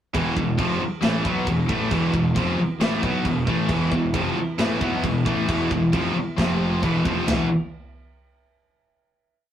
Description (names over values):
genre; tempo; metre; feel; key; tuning
heavy metal; 134 BPM; 4/4; straight; unclear; A4 = 441 Hz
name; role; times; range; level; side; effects
brassy analog pad; sustained chords; 0.1-7.5 s; E3 to G4; -33 LUFS; right 2 dB; none
high-gain distorted guitar; riff; 0.1-7.5 s; E2 to B3; -27 LUFS; right 3 dB; distortion
scooped high-gain guitar; riff; 0.1-7.5 s; E2 to B3; -25 LUFS; left 2 dB; distortion
thick fuzz guitar; riff; 0.1-7.5 s; E2 to B3; -27 LUFS; equal; distortion
fuzz picked electric bass; bass; 0.1-7.5 s; E1 to B1; -30 LUFS; equal; overdrive
tight metal drum kit; drums; 0.1-7.4 s; china cymbal, kick drum, ride cymbal, snare drum, toms; -27 LUFS; equal; none
room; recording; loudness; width
moderate small room ambience, RT60 0.5 s; rough rehearsal-room recording; -20 LUFS; side -10 dB against mid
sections
0.1-7.3 riff; 7.3-9.1 final chord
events
none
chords
0.1 E5; 6.4 F5; 6.8 E5